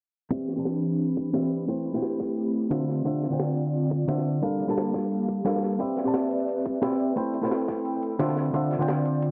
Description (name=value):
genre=liquid drum and bass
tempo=175 BPM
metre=4/4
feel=straight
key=C major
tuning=A4 = 443 Hz
part: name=hollow-body jazz guitar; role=accompaniment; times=0.3-9.3 s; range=D3 to A5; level=-28 LUFS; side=equal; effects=low-pass filter, digital delay
part: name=airy breathy pad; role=sustained chords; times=0.3-9.3 s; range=E3 to B5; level=-32 LUFS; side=equal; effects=chorus, sidechain pumping
part: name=crunchy breakbeat drum kit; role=drums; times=0.3-9.3 s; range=hi-hat, snare drum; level=-36 LUFS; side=equal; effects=high-pass filter on hats, high-pass filter on snare, high-pass filter on room
part: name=electronic hi-hat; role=drums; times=0.3-9.3 s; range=none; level=-61 LUFS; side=equal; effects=none
part: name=electronic kick drum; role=drums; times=0.3-8.6 s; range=none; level=-37 LUFS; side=equal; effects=high-pass filter on kick, high-pass filter on room
room=moderate concert hall reverb, RT60 1.9 s, small room reverb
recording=low-pass filter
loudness=-27 LUFS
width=mono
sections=0.3-9.3 A section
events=filter sweep on hollow-body jazz guitar 0.3-9.3; filter sweep 0.3-9.3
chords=0.3 Cmaj9; 1.7 Am9; 2.9 Dm7; 4.4 Gm7; 5.8 Cmaj9; 7.2 Am9; 8.4 Dm7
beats=| 0.31 0.66 1.00 1.34 | 1.68 2.03 2.37 2.71 | 3.06 3.40 3.74 4.08 | 4.43 4.77 5.11 5.46 | 5.80 6.14 6.48 6.83 | 7.17 7.51 7.86 8.20 | 8.54 8.88 9.23